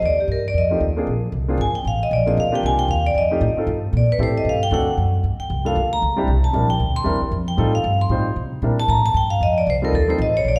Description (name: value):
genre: jazz, small-group swing and bop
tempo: 230 BPM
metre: 4/4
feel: swing 60% on 8ths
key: F mixolydian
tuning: A4 = 440 Hz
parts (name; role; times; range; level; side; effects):
- vibraphone with medium hard mallets; melody; 0.0-10.6 s; G4 to C6; -23 LUFS; equal; none
- upright bass; bass; 0.0-10.6 s; Ab1 to C3; -23 LUFS; equal; none
- warm baby grand piano; accompaniment; 0.7-10.2 s; G3 to C5; -27 LUFS; equal; none
room: wet recital hall reverb, RT60 1.5 s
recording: recorded in a church or concert hall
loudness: -20 LUFS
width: mono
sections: 0.0-9.4 A section; 9.4-10.6 A section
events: vibraphone solo 0.0-10.6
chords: 0.0 Ebmaj7; 0.5 F9; 1.1 Bb9; 3.2 F9; 4.2 Am7; 4.7 D7; 5.2 Gm7; 6.3 C9; 7.3 F9; 8.4 C9; 9.4 F9